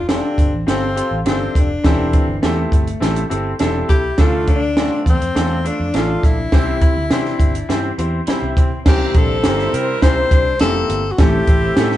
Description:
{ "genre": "uptempo 1960s-style soul", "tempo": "103 BPM", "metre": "4/4", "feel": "straight", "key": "unclear", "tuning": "A4 = 440 Hz", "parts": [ { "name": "breathy tenor saxophone", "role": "melody", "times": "0.0-12.0 s", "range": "C4 to C5", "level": "-21 LUFS", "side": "left 2 dB", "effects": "none" }, { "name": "vintage muted fingered electric bass", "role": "bass", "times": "0.0-12.0 s", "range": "E1 to C3", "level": "-23 LUFS", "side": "equal", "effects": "none" }, { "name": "clear concert grand piano", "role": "accompaniment", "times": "0.1-12.0 s", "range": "A2 to C5", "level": "-23 LUFS", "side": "equal", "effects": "none" }, { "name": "electric guitar through a small old amp", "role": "riff", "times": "0.1-12.0 s", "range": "A3 to F4", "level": "-28 LUFS", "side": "left 3 dB", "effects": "spring reverb" }, { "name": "compact cocktail drum kit", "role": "drums", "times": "0.1-12.0 s", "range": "crash cymbal, hi-hat, kick drum, snare drum", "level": "-16 LUFS", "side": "equal", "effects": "none" }, { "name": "mellow horn section", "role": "second line", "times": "8.8-12.0 s", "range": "G3 to E5", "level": "-25 LUFS", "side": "right 2 dB", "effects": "none" } ], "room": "light reverb", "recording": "band playing live in one room, nothing above 10.6 kHz", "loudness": "-14 LUFS", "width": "side -13 dB against mid", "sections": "0.0-8.9 A section; 8.9-12.0 B section", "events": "none", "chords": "0.0 Fadd9; 1.8 C6/E; 4.2 Dm; 6.5 C; 8.9 C7; 11.2 Am7" }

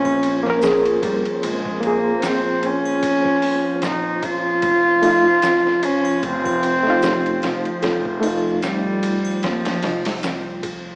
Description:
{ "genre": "trip hop", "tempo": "75 BPM", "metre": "4/4", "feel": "swing 56% on 16ths", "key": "unclear", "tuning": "A4 = 440 Hz", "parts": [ { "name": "warm cello", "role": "melody", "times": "0.0-10.2 s", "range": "F3 to F4", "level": "-22 LUFS", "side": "equal", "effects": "tape echo" }, { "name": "dark analog pad", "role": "sustained chords", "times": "0.0-11.0 s", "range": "F3 to F4", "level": "-30 LUFS", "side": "equal", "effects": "chorus" }, { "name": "music box", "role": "arpeggios", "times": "0.0-11.0 s", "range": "C4 to Bb4", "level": "-29 LUFS", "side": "equal", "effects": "tape echo" }, { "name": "upright bass", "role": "bass", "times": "0.0-11.0 s", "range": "F1 to Eb2", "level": "-36 LUFS", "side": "equal", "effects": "tube saturation" }, { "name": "trip hop sampler-style drum kit", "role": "drums", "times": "0.0-10.8 s", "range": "hi-hat, kick drum, ride cymbal, snare drum", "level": "-31 LUFS", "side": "equal", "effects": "none" }, { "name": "flickering grainy texture", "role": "texture", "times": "0.0-11.0 s", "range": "C4 to C5", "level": "-37 LUFS", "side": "equal", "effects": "none" }, { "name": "triangle and tube shaker", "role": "percussion", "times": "0.1-10.4 s", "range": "none", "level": "-45 LUFS", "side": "equal", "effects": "none" }, { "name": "overdriven reed electric piano", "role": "accompaniment", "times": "0.4-11.0 s", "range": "A3 to Bb4", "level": "-26 LUFS", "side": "equal", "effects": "fast tremolo, harmonic tremolo, tape echo" } ], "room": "moderate lush hall reverb, RT60 2.6 s", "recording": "rough home demo mix, vinyl crackle, small speaker sound", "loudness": "-19 LUFS", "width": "mono", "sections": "0.0-11.0 A section", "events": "none", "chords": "0.0 Bbm7; 4.6 F7" }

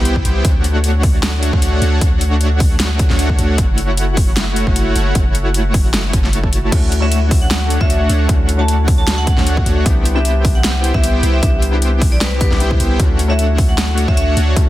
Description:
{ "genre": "future bass", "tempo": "153 BPM", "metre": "4/4", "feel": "swing 54% on 16ths, half-time", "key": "D major", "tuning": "A4 = 440 Hz", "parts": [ { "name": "soft supersaw", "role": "riff", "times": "0.0-14.7 s", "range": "A3 to A5", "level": "-20 LUFS", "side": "equal", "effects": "cassette tape, sidechain pumping" }, { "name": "long sustained 808-style bass", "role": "bass", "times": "0.0-14.7 s", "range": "F#1 to D2", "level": "-16 LUFS", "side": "equal", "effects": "sidechain pumping" }, { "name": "dubstep drum kit", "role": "drums", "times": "0.1-14.6 s", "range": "crash cymbal, hi-hat, snare drum", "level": "-22 LUFS", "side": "equal", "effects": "studio reverb" }, { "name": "electronic kick drum", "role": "drums", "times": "0.2-14.6 s", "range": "none", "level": "-15 LUFS", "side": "equal", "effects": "studio reverb" }, { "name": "felt-muted upright piano", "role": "accompaniment", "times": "6.7-14.7 s", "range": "A3 to C#5", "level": "-26 LUFS", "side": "left 3 dB", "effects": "sidechain pumping, dub echo" }, { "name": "vibraphone with hard mallets", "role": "melody", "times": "7.0-14.3 s", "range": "B4 to A5", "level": "-24 LUFS", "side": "equal", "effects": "sidechain pumping, digital delay" } ], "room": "digital ambience", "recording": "dense, heavily limited modern master", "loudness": "-12 LUFS", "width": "side -15 dB against mid", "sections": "0.0-14.7 A section", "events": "none", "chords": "0.4 Dmaj7; 3.6 F#m7; 6.7 Dmaj7; 9.9 Cmaj7; 13.0 Dmaj7" }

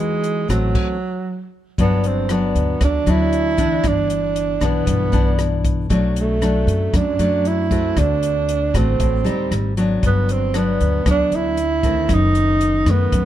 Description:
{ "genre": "bossa nova", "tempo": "116 BPM", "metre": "4/4", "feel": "straight", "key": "G major", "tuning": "A4 = 439 Hz", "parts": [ { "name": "breathy tenor saxophone", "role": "melody", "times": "0.0-13.2 s", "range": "F#3 to E4", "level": "-20 LUFS", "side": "right 4 dB", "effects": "plate reverb" }, { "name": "nylon-string guitar", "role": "accompaniment", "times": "0.0-13.2 s", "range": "F#2 to F#4", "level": "-21 LUFS", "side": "left 3 dB", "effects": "none" }, { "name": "compact cocktail drum kit", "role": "drums", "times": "0.2-13.2 s", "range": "crash cymbal, hi-hat, kick drum, rim click", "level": "-23 LUFS", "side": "equal", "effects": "none" }, { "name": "upright bass", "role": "bass", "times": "0.5-13.2 s", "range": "F#1 to F#2", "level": "-21 LUFS", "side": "equal", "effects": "none" } ], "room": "light reverb", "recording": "dark, warm production", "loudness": "-16 LUFS", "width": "side -12 dB against mid", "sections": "0.0-1.8 A section; 1.8-13.2 B section", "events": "stop 0.7-1.8", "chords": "0.0 Emaj9; 0.7 F#dim; 1.8 Gmaj7; 3.8 Em7/G; 5.9 Bm7; 8.0 D7; 9.5 Abmaj7; 10.0 Gmaj7; 12.1 B7b9/F#" }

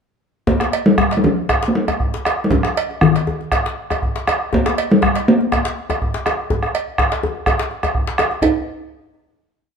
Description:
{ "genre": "west african traditional, West African drum ensemble", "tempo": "117-130 BPM", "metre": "4/4", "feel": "straight", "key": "unclear", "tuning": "A4 = 444 Hz", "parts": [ { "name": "talking drum", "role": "melody", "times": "0.5-8.6 s", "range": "Eb3 to Eb4", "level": "-16 LUFS", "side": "left 1 dB", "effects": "none" }, { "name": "bombo", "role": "percussion", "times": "0.5-8.6 s", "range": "none", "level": "-20 LUFS", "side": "right 1 dB", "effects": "none" }, { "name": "djembe", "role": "percussion", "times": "0.5-8.6 s", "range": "none", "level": "-24 LUFS", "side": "left 4 dB", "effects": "none" }, { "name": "cowbell", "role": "percussion", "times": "0.7-8.6 s", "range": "none", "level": "-26 LUFS", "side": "right 6 dB", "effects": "none" } ], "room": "light reverb", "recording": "band playing live in one room", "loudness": "-15 LUFS", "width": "side -6 dB against mid", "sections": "0.5-8.4 A section; 8.4-9.8 final note", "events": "speeding up 0.5-9.8", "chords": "none" }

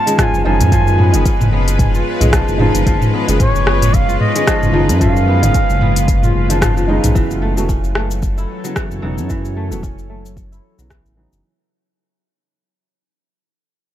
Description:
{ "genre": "organic downtempo", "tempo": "112 BPM", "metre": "4/4", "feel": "swing 56% on 16ths", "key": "F# dorian", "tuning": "A4 = 440 Hz", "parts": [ { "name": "bright reedy bansuri", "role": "melody", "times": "0.0-6.8 s", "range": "C#5 to A5", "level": "-21 LUFS", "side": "right 2 dB", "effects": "digital delay" }, { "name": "bowed-like drone", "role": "sustained chords", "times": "0.0-11.4 s", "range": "F#3 to C#5", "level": "-24 LUFS", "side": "equal", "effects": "built-in reverb, sidechain pumping" }, { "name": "kora", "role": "arpeggios", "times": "0.0-12.1 s", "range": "E3 to E#4", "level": "-22 LUFS", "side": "left 1 dB", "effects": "low-pass filter, tape echo" }, { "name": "felt-muted upright piano", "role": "accompaniment", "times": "0.1-11.4 s", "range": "C#3 to G#4", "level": "-23 LUFS", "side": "right 2 dB", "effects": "sidechain pumping, low-pass filter, tape echo" }, { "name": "afro-pop drum kit", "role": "drums", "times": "0.1-11.4 s", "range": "cabasa, hi-hat, rim click, toms", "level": "-19 LUFS", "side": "left 1 dB", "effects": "none" }, { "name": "electronic kick drum", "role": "drums", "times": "0.2-11.0 s", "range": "none", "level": "-18 LUFS", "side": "equal", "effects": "none" }, { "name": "smooth synth bass", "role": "bass", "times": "0.3-11.4 s", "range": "E1 to F#2", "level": "-17 LUFS", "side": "equal", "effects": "sidechain pumping" } ], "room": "little or no reverb", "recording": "dark, warm production", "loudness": "-12 LUFS", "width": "side -12 dB against mid", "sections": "0.0-7.2 A section; 7.2-11.4 B section", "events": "band accent 6.6; fade-out 7.2-11.4; filter sweep on kora 7.2-11.4; filter sweep on synth drone 7.2-11.4", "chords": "0.0 C#7/F#; 7.2 F#m7" }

